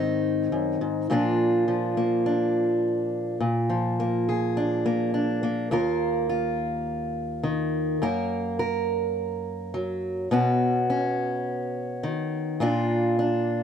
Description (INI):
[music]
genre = folk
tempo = 104 BPM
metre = 4/4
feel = straight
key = unclear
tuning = A4 = 440 Hz
[part]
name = fingerpicked old ladder-braced acoustic guitar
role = solo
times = 0.0-13.6 s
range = Eb2 to Bb4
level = -23 LUFS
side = equal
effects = none
[sound]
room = small room ambience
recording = dry, close 1970s-style studio recording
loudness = -23 LUFS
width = side -8 dB against mid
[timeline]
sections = 0.0-3.4 A section; 3.4-5.7 B section; 5.7-13.6 C section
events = none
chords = 0.0 Abadd9; 1.1 Bb; 5.7 Ebsus2; 8.0 Gb; 10.3 Badd9; 12.6 Bb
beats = 0.51 | 1.09 1.67 2.25 2.83 | 3.40 3.98 4.56 5.13 | 5.71 6.29 6.86 7.44 | 8.01 8.59 9.16 9.73 | 10.31 10.88 11.46 12.03 | 12.60 13.18